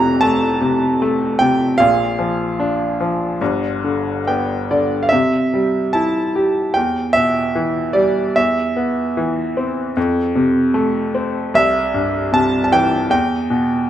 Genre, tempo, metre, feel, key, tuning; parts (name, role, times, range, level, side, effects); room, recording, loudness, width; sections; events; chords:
classical, lyrical solo piano; 74 BPM; 4/4; uneven beats, rubato; C major from 5.1 s; A4 = 435 Hz
bright grand piano; solo; 0.0-13.9 s; F1 to Bb5; -15 LUFS; equal
moderate scoring stage reverb, RT60 1.7 s; minimal, uncompressed stereo recording; -15 LUFS; side -11 dB against mid
0.0-5.1 A section; 5.1-13.9 B section
grand piano fill 3.8-5.1
0.0 Fmaj7; 1.8 Bb; 3.4 G7; 5.1 C; 6.8 Em; 8.4 E5; 10.0 F; 11.5 C; 13.1 Em